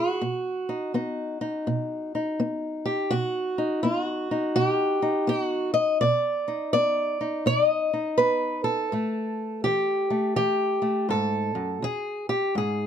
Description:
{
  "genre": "acoustic country blues, solo or duo",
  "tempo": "83 BPM",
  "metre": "4/4",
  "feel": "swing 63% on 8ths",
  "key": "unclear",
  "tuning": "A4 = 439 Hz",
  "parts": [
    { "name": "fingerpicked old ladder-braced acoustic guitar", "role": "solo", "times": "0.0-12.9 s", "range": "E2 to D#5", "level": "-23 LUFS", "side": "equal", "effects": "none" }
  ],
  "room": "little or no reverb",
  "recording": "close, detailed microphones",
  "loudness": "-23 LUFS",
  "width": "side -8 dB against mid",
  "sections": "0.0-12.9 A section",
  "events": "none",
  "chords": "0.2 B; 8.9 A5; 11.8 E",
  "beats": "| 0.23 0.95 1.68 2.40 | 3.12 3.85 4.58 5.30 | 6.03 6.75 7.47 8.20 | 8.93 9.65 10.38 11.11 | 11.83 12.56"
}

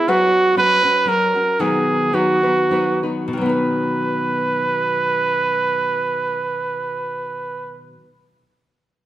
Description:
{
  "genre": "mexican folk, mariachi",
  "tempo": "94-124 BPM",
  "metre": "3/4",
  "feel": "straight",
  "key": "B major",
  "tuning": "A4 = 442 Hz",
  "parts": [
    { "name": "warm trumpet", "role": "melody", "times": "0.0-7.9 s", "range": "E4 to B4", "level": "-18 LUFS", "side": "right 2 dB", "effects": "none" },
    { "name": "nylon-string guitar", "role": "accompaniment", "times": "0.0-8.2 s", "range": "B2 to B4", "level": "-23 LUFS", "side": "left 2 dB", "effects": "none" }
  ],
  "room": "moderate recital hall reverb, RT60 1.4 s",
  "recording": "none",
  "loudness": "-16 LUFS",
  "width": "side -13 dB against mid",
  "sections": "0.0-3.3 A section; 3.3-7.1 B section",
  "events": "slowing down 0.1-3.3",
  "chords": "0.1 F#sus4; 1.1 F#; 1.6 B",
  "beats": "| 0.09 0.58 1.07 | 1.59 2.14 2.72 | 3.34 3.97 4.60 | 5.22 5.84 6.47"
}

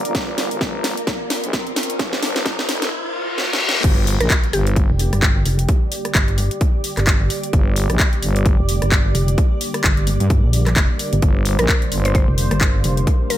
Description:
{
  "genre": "bass house",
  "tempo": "130 BPM",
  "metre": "4/4",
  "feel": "swing 58% on 16ths",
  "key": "G minor",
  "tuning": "A4 = 440 Hz",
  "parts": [
    { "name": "sweeping resonant pad", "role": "sustained chords", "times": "0.0-13.4 s", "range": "D3 to C5", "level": "-28 LUFS", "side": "equal", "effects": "chorus, sidechain pumping" },
    { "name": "growling FM bass", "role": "bass", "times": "0.0-12.3 s", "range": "F1 to Bb1", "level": "-20 LUFS", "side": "equal", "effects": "tube saturation, sidechain pumping, high-pass filter" },
    { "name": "riser, reverse cymbal and impact", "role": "sound effects", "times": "0.5-5.7 s", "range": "none", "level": "-26 LUFS", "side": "left 1 dB", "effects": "none" },
    { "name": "granular cloud pad", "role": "texture", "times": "0.0-13.4 s", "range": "F4 to F5", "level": "-29 LUFS", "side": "right 1 dB", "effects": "built-in reverb, sidechain pumping" },
    { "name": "electronic kick drum", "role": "drums", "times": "0.1-13.2 s", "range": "none", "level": "-18 LUFS", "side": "equal", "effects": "overdrive" },
    { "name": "house drum kit", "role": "drums", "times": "0.1-13.4 s", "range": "crash cymbal, handclaps, hi-hat, rim click, snare drum", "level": "-22 LUFS", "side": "left 1 dB", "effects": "none" },
    { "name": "mallet-like synth pluck", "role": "melody", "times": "4.2-4.9, 11.6-13.4 s", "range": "G4 to C5", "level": "-25 LUFS", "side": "left 2 dB", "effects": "chorus, dub echo" },
    { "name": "pulsing pluck wobble bass", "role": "bass", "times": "4.9-13.1 s", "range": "F1 to G2", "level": "-18 LUFS", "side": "equal", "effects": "chorus, sidechain pumping" }
  ],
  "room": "digital ambience",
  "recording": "high-pass filter",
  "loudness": "-16 LUFS",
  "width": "side -13 dB against mid",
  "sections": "0.0-3.8 A section; 3.8-13.4 B section",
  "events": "build-up 0.0-3.8; drum fill 0.0-2.9, 3.4-3.8; filter sweep 0.0-3.8; riser 0.5-3.8; reverse cymbal 2.9-3.8; drop 3.8-13.4; impact 3.8-5.7",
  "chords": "0.0 Gm",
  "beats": "| 0.15 0.61 1.07 1.53 | 1.99 2.46 2.92 3.38 | 3.84 4.30 4.76 5.22 | 5.69 6.15 6.61 7.07 | 7.53 7.99 8.46 8.92 | 9.38 9.84 10.30 10.76 | 11.22 11.69 12.15 12.61 | 13.07"
}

